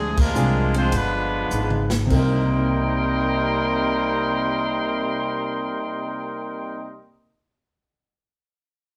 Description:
jazz, big band swing; 98 BPM; 4/4; swing 69% on 8ths; C minor; A4 = 440 Hz
clear trumpet section; melody; 0.0-7.0 s; Ab3 to C6; -27 LUFS; equal
clear trombone section; second line; 0.0-7.0 s; C3 to Eb4; -30 LUFS; equal
upright bass; bass; 0.0-7.0 s; G1 to D2; -27 LUFS; equal
swinging big-band drum kit; drums; 0.2-2.3 s; crash cymbal, hi-hat, kick drum, ride cymbal, snare drum, toms; -28 LUFS; equal
warm grand piano; accompaniment; 0.3-7.1 s; C3 to Bb4; -29 LUFS; equal
moderate studio reverb, RT60 0.7 s; band playing live in one room; -22 LUFS; mono
0.0-2.1 A section; 2.1-7.0 B section
slowing down 0.0-2.1; band accent 0.1; drum fill 1.5-2.1
0.0 Dm7b5; 0.9 G7b9; 2.1 Cm7

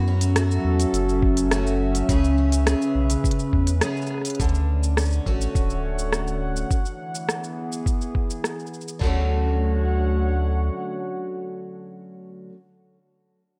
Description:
folktronica; 104 BPM; 4/4; straight; D lydian; A4 = 440 Hz
warbly tape-like pad; sustained chords; 0.0-12.1 s; C#3 to F#5; -33 LUFS; equal; chorus, built-in reverb
picked twelve-string acoustic guitar; arpeggios; 0.0-12.6 s; F#2 to G#4; -29 LUFS; equal; tape echo
warm sub bass; bass; 0.0-10.7 s; D1 to F#2; -24 LUFS; equal
organic electronic drum kit; drums; 0.2-9.0 s; hi-hat, rim click, shaker; -30 LUFS; equal
lo-fi sampler-style drum kit; drums; 1.2-9.1 s; crash cymbal, kick drum; -26 LUFS; equal
little or no reverb; -23 LUFS; mono
0.0-4.4 A section; 4.4-9.0 B section; 9.0-11.3 C section
break 3.8-4.4
0.0 F#m7; 2.1 C#m7; 4.4 Dmaj7; 6.7 Eadd9; 9.0 Dmaj7

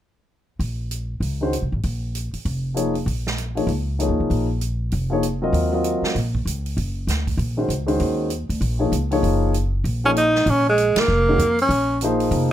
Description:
modal jazz; 195 BPM; 4/4; swing 61% on 8ths; Bb minor; A4 = 440 Hz
upright bass; bass; 0.6-12.5 s; F1 to F2; -23 LUFS; equal
swinging big-band drum kit; drums; 0.6-12.4 s; hi-hat, kick drum, ride cymbal, snare drum; -31 LUFS; right 3 dB
warm grand piano; accompaniment; 1.4-12.5 s; Eb3 to Eb5; -22 LUFS; left 1 dB
breathy tenor saxophone; melody; 10.1-12.0 s; Ab3 to Eb4; -17 LUFS; right 1 dB
light reverb; -19 LUFS; side -12 dB against mid
0.6-10.5 A section; 10.5-12.5 B section
band accent 10.9
0.6 Bbm11; 5.5 Ebm11; 10.5 Bbm11

